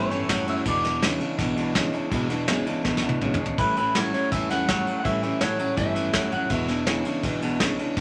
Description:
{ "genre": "rockabilly", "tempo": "164 BPM", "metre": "4/4", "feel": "straight", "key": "E mixolydian", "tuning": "A4 = 439 Hz", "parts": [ { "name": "electric guitar through a small old amp", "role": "melody", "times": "0.0-1.0, 3.6-6.9 s", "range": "B4 to F#5", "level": "-29 LUFS", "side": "equal", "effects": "none" }, { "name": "picked steel-string acoustic guitar", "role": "accompaniment", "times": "0.0-8.0 s", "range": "E2 to E4", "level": "-31 LUFS", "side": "equal", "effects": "none" }, { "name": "twangy electric guitar", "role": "riff", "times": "0.0-8.0 s", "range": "E2 to F#3", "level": "-30 LUFS", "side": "equal", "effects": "none" }, { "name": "upright bass", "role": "bass", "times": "0.0-8.0 s", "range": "E1 to E2", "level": "-39 LUFS", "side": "equal", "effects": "none" }, { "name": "soft brush drum kit", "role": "drums", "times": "0.1-8.0 s", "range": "kick drum, ride cymbal, snare drum, toms", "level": "-30 LUFS", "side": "equal", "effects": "none" } ], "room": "moderate studio reverb, RT60 0.7 s", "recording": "none", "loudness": "-25 LUFS", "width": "mono", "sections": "0.0-8.0 A section", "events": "drum fill 2.9-3.6", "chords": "0.0 A7; 0.7 E7; 3.6 A7; 6.5 E7" }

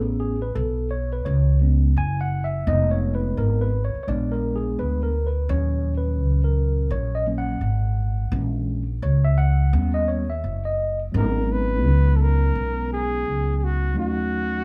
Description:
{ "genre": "hip hop, jazz-hop", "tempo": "85 BPM", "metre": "4/4", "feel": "swing 62% on 16ths", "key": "G# minor", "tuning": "A4 = 439 Hz", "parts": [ { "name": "mellow tine electric piano", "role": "accompaniment", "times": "0.0-14.6 s", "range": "A#2 to G#5", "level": "-29 LUFS", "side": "equal", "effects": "none" }, { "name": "upright bass", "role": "bass", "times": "0.0-14.6 s", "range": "F1 to D#2", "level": "-24 LUFS", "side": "equal", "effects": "none" }, { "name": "breathy flugelhorn", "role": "melody", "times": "11.2-14.6 s", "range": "F#4 to B4", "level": "-29 LUFS", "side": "equal", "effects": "none" } ], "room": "little or no reverb", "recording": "small room ambience", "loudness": "-22 LUFS", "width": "mono", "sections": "0.0-11.1 A section; 11.1-14.6 B section", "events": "tine electric piano solo 0.0-11.1", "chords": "0.0 Amaj9; 2.7 Fm7b5; 4.1 A#7b9; 5.5 D#m7; 8.3 A#m7b5; 9.7 D#7alt; 11.1 G#m11; 14.0 D#m7b5" }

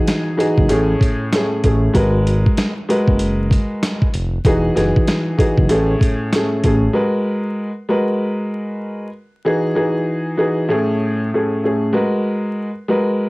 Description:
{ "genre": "hip hop, boom-bap hip-hop", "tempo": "96 BPM", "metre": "4/4", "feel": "swing 62% on 16ths", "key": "G# phrygian", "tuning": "A4 = 440 Hz", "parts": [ { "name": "warm upright piano", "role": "accompaniment", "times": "0.0-13.3 s", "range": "A2 to B4", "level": "-17 LUFS", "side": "equal", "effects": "high-pass filter, low-pass filter, cassette tape" }, { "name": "dusty soul sampler-style drum kit", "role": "drums", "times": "0.1-6.8 s", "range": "hi-hat, kick drum, snare drum", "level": "-17 LUFS", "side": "equal", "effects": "cassette tape" }, { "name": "smooth synth bass", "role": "bass", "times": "0.6-6.9 s", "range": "E1 to A1", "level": "-18 LUFS", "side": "equal", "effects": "transformer saturation" } ], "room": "light reverb", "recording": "home recording on cassette, vinyl crackle", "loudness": "-15 LUFS", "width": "side -23 dB against mid", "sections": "0.0-6.9 A section; 6.9-13.3 B section", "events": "none", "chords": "0.0 Emaj9; 0.7 Amaj7; 1.9 G#m9; 4.4 Emaj9; 5.7 Amaj7; 6.9 G#m9; 9.4 Emaj9; 10.7 Amaj7; 11.9 G#m9" }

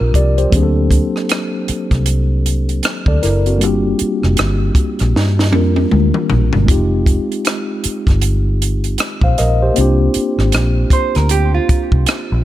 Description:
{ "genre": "R&B, neo-soul", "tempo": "78 BPM", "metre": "4/4", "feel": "swing 60% on 16ths", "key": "F dorian", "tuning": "A4 = 441 Hz", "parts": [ { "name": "mellow tine electric piano", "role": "accompaniment", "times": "0.0-12.4 s", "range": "F3 to F5", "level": "-18 LUFS", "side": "left 2 dB", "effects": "medium stereo tremolo" }, { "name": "vintage muted fingered electric bass", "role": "bass", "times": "0.0-12.4 s", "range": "F1 to G2", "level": "-15 LUFS", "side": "equal", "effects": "none" }, { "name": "compact cocktail drum kit", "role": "drums", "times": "0.1-12.3 s", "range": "hi-hat, kick drum, rim click, snare drum, toms", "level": "-16 LUFS", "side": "equal", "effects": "none" }, { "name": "vintage hollow-body jazz guitar", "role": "second line", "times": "10.9-12.4 s", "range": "F4 to C5", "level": "-19 LUFS", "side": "right 7 dB", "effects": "tape echo" } ], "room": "small room reverb", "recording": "none", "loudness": "-12 LUFS", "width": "side -14 dB against mid", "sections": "0.0-12.4 A section", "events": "drum fill 5.1-6.7", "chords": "0.0 C9sus4; 0.5 D7b13; 3.6 Gm7; 6.7 Fm9; 9.8 C9sus4" }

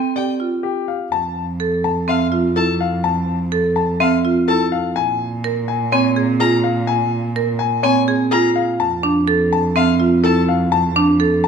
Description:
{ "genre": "classical, minimalist pattern music", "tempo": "125 BPM", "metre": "4/4", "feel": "straight", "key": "unclear", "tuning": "A4 = 440 Hz", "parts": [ { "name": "clear grand piano", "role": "melody", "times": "0.0-11.5 s", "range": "G4 to A5", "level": "-21 LUFS", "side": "left 10 dB", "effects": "none" }, { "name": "marimba with hard mallets", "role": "arpeggios", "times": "0.0-11.5 s", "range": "C4 to Bb4", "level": "-18 LUFS", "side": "right 4 dB", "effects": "none" }, { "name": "rich violin", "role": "arpeggios", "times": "0.2-10.4 s", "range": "F5 to Bb5", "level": "-24 LUFS", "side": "left 6 dB", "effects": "none" }, { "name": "warm cello", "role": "bass", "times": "1.1-11.5 s", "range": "F2 to Bb2", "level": "-22 LUFS", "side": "right 2 dB", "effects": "none" } ], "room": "wet recital hall reverb, RT60 1.3 s", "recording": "none", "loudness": "-15 LUFS", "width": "side -6 dB against mid", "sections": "0.0-1.1 A section; 1.1-11.5 B section", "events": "none", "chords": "0.0 Fsus2; 1.1 Fmaj7; 5.0 Bb7(no3); 8.8 F" }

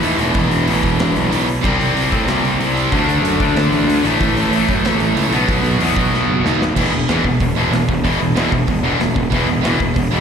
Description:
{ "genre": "punk rock", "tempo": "187 BPM", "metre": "4/4", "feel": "straight", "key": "unclear", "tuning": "A4 = 440 Hz", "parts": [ { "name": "distorted electric guitar", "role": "riff", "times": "0.0-10.2 s", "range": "E2 to D4", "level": "-18 LUFS", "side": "left 7 dB", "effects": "overdrive, slapback echo" }, { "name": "distorted electric guitar", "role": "riff", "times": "0.0-10.2 s", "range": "E2 to D4", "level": "-20 LUFS", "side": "right 14 dB", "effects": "overdrive" }, { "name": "fuzz picked electric bass", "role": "bass", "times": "0.0-10.2 s", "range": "E1 to A2", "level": "-19 LUFS", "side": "equal", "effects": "overdrive" }, { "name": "big rock drum kit", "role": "drums", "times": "0.0-10.0 s", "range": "crash cymbal, hi-hat, kick drum, snare drum", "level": "-22 LUFS", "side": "equal", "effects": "none" } ], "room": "small room ambience", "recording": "live gig heard through the venue's PA, recital hall reverb", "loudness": "-14 LUFS", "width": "side -7 dB against mid", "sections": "0.0-6.8 A section; 6.8-10.2 B section", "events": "half time 0.0-6.8; drum fill 6.1-6.8", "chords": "0.2 E5; 1.6 C5; 2.9 D; 4.0 A5; 5.3 B; 6.8 E5" }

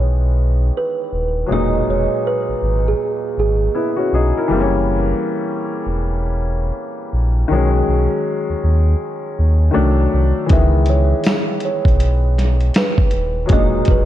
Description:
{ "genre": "lo-fi hip hop", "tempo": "80 BPM", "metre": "4/4", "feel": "swing 62% on 16ths", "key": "C# dorian", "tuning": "A4 = 440 Hz", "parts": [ { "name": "felt-muted upright piano", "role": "accompaniment", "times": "0.0-14.1 s", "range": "A#2 to A#4", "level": "-20 LUFS", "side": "left 3 dB", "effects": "low-pass filter" }, { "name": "sub bass with octave", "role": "bass", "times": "0.0-14.1 s", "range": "D#1 to D#2", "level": "-16 LUFS", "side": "equal", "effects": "none" }, { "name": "kalimba", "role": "melody", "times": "0.8-3.6, 10.5-14.1 s", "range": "G#4 to E5", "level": "-23 LUFS", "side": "right 5 dB", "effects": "low-pass filter, tape echo" }, { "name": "dusty soul sampler-style drum kit", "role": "drums", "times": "10.5-14.1 s", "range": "hi-hat, kick drum, snare drum", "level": "-16 LUFS", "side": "equal", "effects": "vintage 12-bit sampler grit" }, { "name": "tambourine", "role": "percussion", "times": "11.2-13.0 s", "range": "none", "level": "-42 LUFS", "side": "left 4 dB", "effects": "none" } ], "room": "light reverb, small room ambience", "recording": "cassette tape", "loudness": "-15 LUFS", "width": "side -12 dB against mid", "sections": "0.0-14.1 A section", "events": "none", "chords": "0.0 C#m9 (rootless); 1.5 Emaj9#11; 4.5 F#7b9; 7.5 B6; 9.8 Cdim7; 10.5 C#m9; 13.5 Emaj9#11" }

